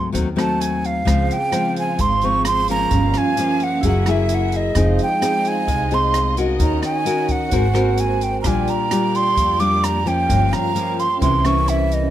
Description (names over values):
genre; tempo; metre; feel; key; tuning
bossa nova; 130 BPM; 4/4; straight; F minor; A4 = 438 Hz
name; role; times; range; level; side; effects
breathy hollow jazz flute; melody; 0.0-12.1 s; Eb5 to D6; -20 LUFS; right 2 dB; none
nylon-string guitar; accompaniment; 0.0-12.1 s; G2 to Bb4; -22 LUFS; left 4 dB; none
upright bass; bass; 0.1-12.1 s; F1 to F2; -21 LUFS; equal; none
open jazz drum kit; drums; 0.1-12.0 s; hi-hat, kick drum, rim click; -26 LUFS; equal; none
vibraphone with medium hard mallets; accompaniment; 1.1-12.1 s; Db4 to Ab5; -26 LUFS; right 5 dB; none
warm symphonic string section; sustained chords; 1.1-12.1 s; G3 to F5; -30 LUFS; left 1 dB; none
room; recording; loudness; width
little or no reverb; close, detailed microphones; -16 LUFS; side -12 dB against mid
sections
0.0-12.1 A section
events
none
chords
0.0 Ab7b9; 1.1 Dbmaj7; 2.9 Gm7b5; 3.8 Gb9; 4.8 Fm7; 6.6 Ebm7; 7.5 Ab9; 8.5 Bb6; 10.3 Gm7b5; 11.2 C7b9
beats
0.15 0.61 | 1.07 1.53 1.99 2.45 | 2.92 3.38 3.84 4.30 | 4.76 5.22 5.68 6.15 | 6.61 7.07 7.53 7.99 | 8.45 8.91 9.38 9.84 | 10.30 10.76 11.22 11.68